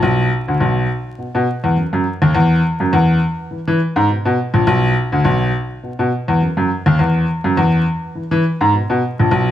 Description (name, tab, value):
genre	funk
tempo	103 BPM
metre	4/4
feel	swing 56% on 16ths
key	unclear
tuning	A4 = 439 Hz
part	clear grand piano	solo	0.0-9.5 s	A#1 to E3	-14 LUFS	equal	none
room	light reverb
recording	vinyl crackle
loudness	-14 LUFS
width	side -11 dB against mid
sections	0.0-9.5 A section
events	none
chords	none